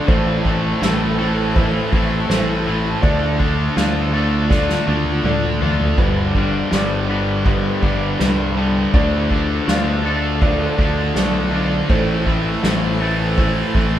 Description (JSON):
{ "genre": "post-rock", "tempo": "81 BPM", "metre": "4/4", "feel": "straight", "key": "D dorian", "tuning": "A4 = 440 Hz", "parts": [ { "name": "ethereal airy pad", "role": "sustained chords", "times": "0.0-14.0 s", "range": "E4 to B5", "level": "-30 LUFS", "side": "right 1 dB", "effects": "ensemble chorus, built-in reverb, phaser" }, { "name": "felt-muted upright piano", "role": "arpeggios", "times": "0.0-14.0 s", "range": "B4 to F5", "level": "-28 LUFS", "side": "right 2 dB", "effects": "none" }, { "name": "twangy electric guitar", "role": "arpeggios", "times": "0.0-14.0 s", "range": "A2 to B4", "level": "-29 LUFS", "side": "left 1 dB", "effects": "none" }, { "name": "crunchy overdriven guitar", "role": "riff", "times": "0.0-14.0 s", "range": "G2 to D4", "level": "-23 LUFS", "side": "left 5 dB", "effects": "none" }, { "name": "distorted electric guitar", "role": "riff", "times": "0.0-14.0 s", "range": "G2 to D4", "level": "-23 LUFS", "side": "right 5 dB", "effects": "distortion" }, { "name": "growling fingered electric bass", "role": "bass", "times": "0.1-14.0 s", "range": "G1 to D2", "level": "-21 LUFS", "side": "equal", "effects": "overdrive" }, { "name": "soft-mallet drum kit", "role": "drums", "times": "0.1-13.9 s", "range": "crash cymbal, kick drum, snare drum, toms", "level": "-21 LUFS", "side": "equal", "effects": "none" } ], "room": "moderate stone room reverb, RT60 1.1 s", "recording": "band playing live in one room", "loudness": "-15 LUFS", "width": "side -11 dB against mid", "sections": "0.0-14.0 A section", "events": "drum fill 4.5-6.0", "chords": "0.1 Am; 3.0 Dm; 6.0 G; 8.9 Dm; 11.9 Am", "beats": "| 0.08 0.82 1.55 2.29 | 3.03 3.77 4.51 5.25 | 5.99 6.72 7.46 8.20 | 8.94 9.68 10.42 11.16 | 11.90 12.64 13.38" }